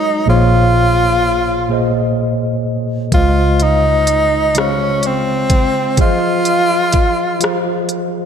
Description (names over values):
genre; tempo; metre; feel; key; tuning
slow six-eight R&B; 42 BPM (dotted quarters); 6/8; straight; Db major; A4 = 441 Hz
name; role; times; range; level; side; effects
breathy tenor saxophone; melody; 0.0-7.9 s; C4 to F4; -15 LUFS; equal; slapback echo
mellow tine electric piano; accompaniment; 0.0-8.3 s; Bb2 to F5; -18 LUFS; equal; medium stereo tremolo, slapback echo
vintage muted fingered electric bass; bass; 0.0-8.3 s; F1 to Db2; -17 LUFS; equal; none
smooth R&B drum kit; drums; 3.1-8.1 s; hi-hat, kick drum, rim click; -17 LUFS; equal; none
room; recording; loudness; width
moderate concert hall reverb, RT60 2.2 s; big arena sound; -12 LUFS; side -8 dB against mid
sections
0.0-8.3 A section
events
none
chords
0.3 Bbm9; 3.1 Dbmaj7; 6.0 Fm7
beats
| 0.27 1.70 | 3.12 4.55 | 5.98 7.41